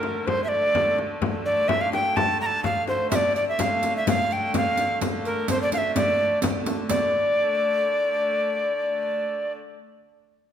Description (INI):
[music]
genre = medieval dance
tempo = 127 BPM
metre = 2/4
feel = straight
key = D minor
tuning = A4 = 440 Hz
[part]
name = breathy bright alto recorder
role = melody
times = 0.0-9.5 s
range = Bb4 to Bb5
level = -23 LUFS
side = equal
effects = none
[part]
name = rich hurdy-gurdy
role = drone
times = 0.0-9.6 s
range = D3 to A3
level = -32 LUFS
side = right 1 dB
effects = none
[part]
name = frame drum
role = percussion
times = 0.0-7.1 s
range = none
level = -28 LUFS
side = left 4 dB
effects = none
[part]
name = riq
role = percussion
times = 3.1-7.1 s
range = none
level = -30 LUFS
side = right 7 dB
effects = none
[sound]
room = wet recital hall reverb, RT60 1.5 s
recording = minimal, uncompressed stereo recording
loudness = -21 LUFS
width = side -9 dB against mid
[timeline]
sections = 0.0-6.9 A section; 6.9-8.8 B section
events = none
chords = none